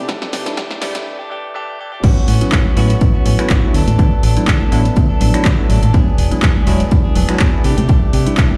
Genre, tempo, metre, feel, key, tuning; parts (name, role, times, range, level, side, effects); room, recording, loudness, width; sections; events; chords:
filtered disco house; 123 BPM; 4/4; swing 54% on 16ths; A major; A4 = 440 Hz
direct-recorded clean electric guitar; riff; 0.0-8.6 s; E3 to A4; -26 LUFS; equal; vintage 12-bit sampler grit, sidechain pumping, low-pass filter
fingered electric bass; bass; 0.0-8.5 s; E1 to C3; -19 LUFS; equal; sidechain pumping, low-pass filter
bell-like tine electric piano; accompaniment; 0.1-8.6 s; F#3 to E4; -24 LUFS; equal; phaser, sidechain pumping, low-pass filter
electronic kick drum; drums; 0.1-8.5 s; -16 LUFS; equal; overdrive, high-pass filter on kick, high-pass filter on room
punchy analog drum machine; drums; 0.1-8.5 s; crash cymbal, finger snaps, handclaps, hi-hat, snare drum; -25 LUFS; equal; sidechain pumping on hats, sidechain pumping on cymbals
tambourine and congas; percussion; 0.1-8.6 s; -28 LUFS; equal
little or no reverb; played on a big sound system in a bare room, stone room reverb, high-pass filter; -14 LUFS; mono
0.0-2.0 A section; 2.0-8.6 B section
build-up 0.0-2.0; drum fill 0.0-1.1; filter sweep 0.0-2.0; break 1.1-2.0; drop 2.0-8.6
0.0 C69; 2.0 A69; 3.7 D6; 5.9 E9; 7.6 C69